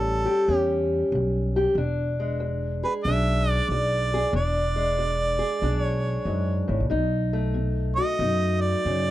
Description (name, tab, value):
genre	acoustic country blues, solo or duo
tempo	93 BPM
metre	4/4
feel	swing 66% on 8ths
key	E mixolydian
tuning	A4 = 440 Hz
part	warm harmonica	melody	0.0-9.1 s	A4 to E5	-26 LUFS	right 2 dB	none
part	fingerpicked steel-string acoustic guitar	accompaniment	0.0-9.1 s	E2 to G#4	-26 LUFS	left 1 dB	none
part	upright bass	bass	0.0-9.1 s	E1 to F#2	-26 LUFS	equal	none
room	small room ambience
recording	dry, close 1970s-style studio recording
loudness	-22 LUFS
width	side -14 dB against mid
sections	0.0-9.1 A section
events	none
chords	0.0 A7; 1.8 E7; 6.9 B7